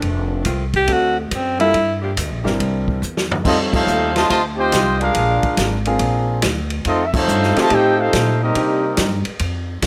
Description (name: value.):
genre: jazz, big band swing.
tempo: 141 BPM.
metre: 4/4.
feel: swing 66% on 8ths.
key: F major from 3.4 s.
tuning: A4 = 440 Hz.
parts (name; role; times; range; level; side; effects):
mellow saxophone section; sustained chords; 0.0-2.5 s; Eb3 to G4; -30 LUFS; equal; none.
upright bass; bass; 0.0-9.9 s; F1 to C3; -25 LUFS; equal; none.
vintage drum kit; drums; 0.0-9.9 s; crash cymbal, hi-hat, kick drum, ride cymbal, snare drum, toms; -25 LUFS; equal; none.
clear alto saxophone; melody; 0.8-2.0 s; A3 to G4; -20 LUFS; equal; none.
warm grand piano; accompaniment; 0.9-8.8 s; G3 to Bb4; -25 LUFS; equal; none.
warm trombone section; second line; 3.4-9.2 s; C3 to G4; -25 LUFS; equal; none.
mellow trumpet section; melody; 3.5-9.2 s; C4 to A5; -21 LUFS; equal; none.
room: light reverb.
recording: none.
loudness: -18 LUFS.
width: mono.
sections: 0.0-3.4 A section; 3.4-9.9 B section.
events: alto saxophone solo 0.0-3.4; drum fill 3.0-3.4; band accent 3.7, 7.1.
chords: 0.0 F7; 0.9 D7; 1.7 Gm; 2.6 C7; 3.4 F7; 5.2 Bb7; 6.9 F7; 8.6 Cm7.